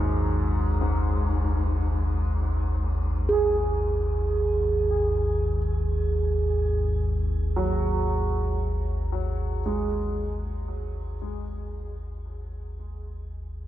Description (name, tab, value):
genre	dark ambient drone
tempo	free time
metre	none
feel	none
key	unclear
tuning	A4 = 440 Hz
part	warm grand piano	arpeggios	0.0-13.7 s	G#2 to G#4	-32 LUFS	equal	lush chorus, ping-pong delay, shimmer reverb
part	deep rumbling drone	drone	0.0-13.7 s	G#1 to D#2	-26 LUFS	equal	built-in reverb, lush chorus
part	quartz singing bowl	texture	0.0-13.7 s	D#4 to G#4	-30 LUFS	right 4 dB	shimmer reverb
room	moderate lush hall reverb, RT60 2.5 s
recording	none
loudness	-23 LUFS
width	side -13 dB against mid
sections	0.0-13.7 A section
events	fade-out 8.9-13.7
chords	0.0 G#5